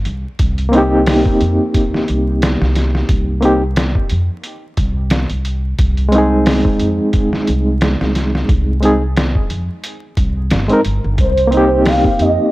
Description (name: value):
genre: trip hop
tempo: 89 BPM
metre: 4/4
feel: swing 56% on 16ths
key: C minor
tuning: A4 = 440 Hz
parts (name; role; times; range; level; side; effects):
- upright bass; bass; 0.0-12.4 s; G1 to F2; -17 LUFS; equal; none
- trip hop sampler-style drum kit; drums; 0.1-12.4 s; hi-hat, kick drum, snare drum; -17 LUFS; equal; vintage 12-bit sampler grit, studio ambience
- overdriven reed electric piano; accompaniment; 0.7-12.5 s; Ab3 to Bb4; -15 LUFS; equal; fast tremolo, tape echo
- pure breathy sine lead; melody; 11.2-12.5 s; C5 to F5; -15 LUFS; right 2 dB; ensemble chorus
- deep dark ambient pad; sustained chords; 12.3-12.5 s; none; barely audible; none; none
room: little or no reverb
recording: dry, gritty hardware recording, vinyl crackle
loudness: -12 LUFS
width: side -18 dB against mid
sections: 0.0-12.5 A section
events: none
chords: 0.4 Cm7; 5.8 Ab/C; 11.2 Cm7